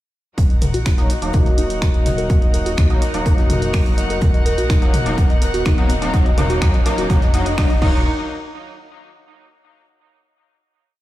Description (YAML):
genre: melodic techno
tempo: 125 BPM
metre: 4/4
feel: straight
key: Eb minor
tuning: A4 = 440 Hz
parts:
  - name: rich chamber string section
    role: sustained chords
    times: 0.4-8.0 s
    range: Eb3 to Gb5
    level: -28 LUFS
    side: left 1 dB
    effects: sidechain pumping
  - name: soft round pluck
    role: arpeggios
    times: 0.4-8.0 s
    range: Eb4 to Gb5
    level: -26 LUFS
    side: equal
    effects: chorus, cassette tape, sidechain pumping, ping-pong delay
  - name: dark detuned saw bass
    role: bass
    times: 0.4-8.0 s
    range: Eb1 to Eb2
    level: -24 LUFS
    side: equal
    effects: sidechain pumping
  - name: electronic kick drum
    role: drums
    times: 0.4-7.9 s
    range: none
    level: -16 LUFS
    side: equal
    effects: none
  - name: jazz brush drum kit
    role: drums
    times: 0.4-7.7 s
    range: hi-hat, snare drum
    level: -38 LUFS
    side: right 2 dB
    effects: none
  - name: punchy analog drum machine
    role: drums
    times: 0.4-7.9 s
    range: crash cymbal, finger snaps, hi-hat, toms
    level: -26 LUFS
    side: left 1 dB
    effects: sidechain pumping on hats, sidechain pumping on toms, sidechain pumping on cymbals
  - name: riser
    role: sound effects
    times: 3.0-8.1 s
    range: none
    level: -30 LUFS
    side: equal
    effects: none
  - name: sync-sweep polysynth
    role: stabs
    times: 1.0-8.0 s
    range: Gb3 to Eb4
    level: -24 LUFS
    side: left 1 dB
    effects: chorus, sidechain pumping, ping-pong delay
room: light reverb, digital ambience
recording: played on a big sound system in a bare room, stone room reverb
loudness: -14 LUFS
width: side -15 dB against mid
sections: 0.4-8.1 build; 8.1-10.0 final hit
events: build-up 0.4-8.1; filter sweep on synth arpeggio sound 0.4-8.1; riser 3.0-8.1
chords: 0.4 Ebm; 8.1 N.C.